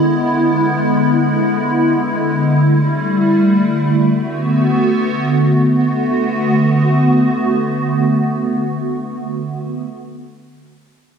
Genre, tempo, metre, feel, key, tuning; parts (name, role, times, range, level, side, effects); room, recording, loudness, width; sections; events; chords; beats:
dream pop; free time; B minor; A4 = 441 Hz
hollow soft pad; sustained chords; 0.0-9.9 s; D3 to F#4; -13 LUFS; equal; ensemble chorus
wet recital hall reverb, RT60 1.3 s; -13 LUFS; side -7 dB against mid
0.0-5.8 A section; 5.8-9.2 B section
slowing down 0.0-5.8
0.0 E7; 2.5 A7sus4; 4.1 Bm7
free time